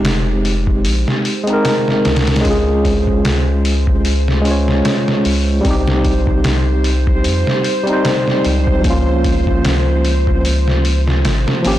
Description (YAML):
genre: trip hop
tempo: 75 BPM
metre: 4/4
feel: swing 56% on 16ths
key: F minor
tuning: A4 = 439 Hz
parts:
  - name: overdriven tine electric piano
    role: accompaniment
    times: 0.0-11.8 s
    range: F3 to Db5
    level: -17 LUFS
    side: right 1 dB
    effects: tremolo, low-pass filter, tape echo
  - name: round analog bass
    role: bass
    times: 0.0-11.8 s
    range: F1 to F2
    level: -16 LUFS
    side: equal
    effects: tube saturation
  - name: trip hop sampler-style drum kit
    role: drums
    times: 0.0-11.8 s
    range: hi-hat, kick drum, snare drum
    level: -18 LUFS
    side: equal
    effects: none
  - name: bowed-like drone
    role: texture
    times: 0.2-11.8 s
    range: C5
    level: -25 LUFS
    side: right 1 dB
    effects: built-in reverb
room: light reverb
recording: blown-out, overdriven recording, overdrive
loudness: -13 LUFS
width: side -13 dB against mid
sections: 0.0-11.8 A section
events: none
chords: 0.0 Fm7; 2.4 Db; 5.6 Cm; 8.8 Bbm/Db